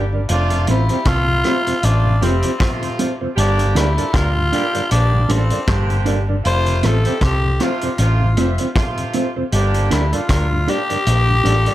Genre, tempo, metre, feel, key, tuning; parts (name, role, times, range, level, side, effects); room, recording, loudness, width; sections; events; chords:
roots reggae; 78 BPM; 4/4; swing 57% on 16ths; F major; A4 = 438 Hz
clear horn section; second line; 0.0-11.7 s; C3 to E5; -25 LUFS; right 3 dB; tape echo
mellow electric guitar; accompaniment; 0.0-11.7 s; C4 to D5; -25 LUFS; right 3 dB; tape echo
hollow-body short-scale fingered electric bass; bass; 0.0-11.7 s; F1 to D2; -17 LUFS; equal
mellow tonewheel organ; accompaniment; 0.1-11.7 s; F2 to D4; -28 LUFS; left 2 dB; slow rotary speaker
growling tenor saxophone; melody; 0.3-11.7 s; C4 to C5; -22 LUFS; left 2 dB; tape echo
vintage drum kit; drums; 0.3-11.7 s; hi-hat, kick drum, rim click; -23 LUFS; equal
little or no reverb; -15 LUFS; side -14 dB against mid
0.0-11.7 A section
0.3 F; 3.4 Gm; 6.4 F; 9.5 Gm